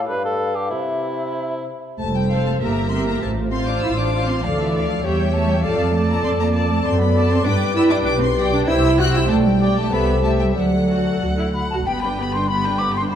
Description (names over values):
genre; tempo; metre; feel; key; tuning
quick classical-period movement for symphony orchestra; 97 BPM; 2/4; rubato; G major from 6.9 s; A4 = 440 Hz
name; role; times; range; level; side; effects
hollow concert flute; second line; 0.0-1.7, 11.5-13.2 s; E5 to D6; -25 LUFS; left 4 dB; none
warm bassoon; accompaniment; 0.0-1.7 s; G2 to C3; -27 LUFS; left 1 dB; none
mellow cor anglais; second line; 0.1-1.6 s; E4 to B4; -25 LUFS; right 1 dB; none
rich chamber violin section; second line; 2.0-13.2 s; F#4 to F#6; -28 LUFS; left 4 dB; none
warm French horn section; sustained chords; 2.0-11.5 s; E4 to D5; -25 LUFS; left 6 dB; none
dark chamber cello section; bass; 2.0-13.2 s; G2 to F#4; -21 LUFS; right 2 dB; none
warm chamber double bass section; bass; 2.0-13.2 s; F1 to G2; -22 LUFS; right 1 dB; none
rich chamber violin section; melody; 2.3-13.2 s; C5 to B5; -30 LUFS; left 4 dB; none
warm symphonic viola section; accompaniment; 2.3-13.2 s; B3 to D5; -25 LUFS; right 1 dB; none
room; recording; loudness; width
wet scoring stage reverb, RT60 2.0 s; dark, warm production; -17 LUFS; side -9 dB against mid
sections
0.0-2.0 A section; 2.0-11.9 B section; 11.9-13.2 C section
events
none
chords
0.1 G9; 0.7 C; 2.0 F; 2.6 Edim/G; 3.2 F/A; 4.4 Dm; 5.0 C#dim/E; 5.6 Dm/F; 6.9 D7/F#; 7.5 G; 8.1 G/B; 8.7 C; 9.3 G/B; 9.9 Am7/C; 10.6 D; 11.9 G